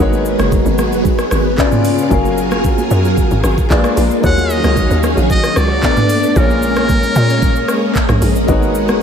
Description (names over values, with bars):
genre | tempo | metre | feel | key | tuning
amapiano | 113 BPM | 4/4 | straight | Eb minor | A4 = 440 Hz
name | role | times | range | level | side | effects
clear concert grand piano | accompaniment | 0.0-9.0 s | Bb2 to F5 | -18 LUFS | left 4 dB | wide subtle chorus
string machine, violins | sustained chords | 0.0-9.0 s | Db3 to F5 | -18 LUFS | equal | ensemble chorus, sidechain pumping
hollow log drum bass | bass | 0.0-9.0 s | Gb1 to Bb2 | -17 LUFS | equal | none
afro-pop drum kit | drums | 0.1-9.0 s | handclaps, hi-hat, kick drum, rim click, shaker, toms | -17 LUFS | equal | none
congas | percussion | 0.1-9.0 s | none | -24 LUFS | right 9 dB | none
trumpet with metal mute | melody | 4.2-8.2 s | Bb4 to Gb5 | -20 LUFS | equal | tape echo
room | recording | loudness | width
moderate plate reverb, RT60 1.5 s | dreamy mix soaked in reverb | -11 LUFS | side -7 dB against mid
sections
0.0-9.0 A section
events
none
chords
0.0 Abm11; 1.6 Db7b9; 2.1 Gbmaj9; 3.7 Bb7b9; 4.2 Ebm11; 5.8 Bm7; 6.4 Bbm7; 8.5 Abm11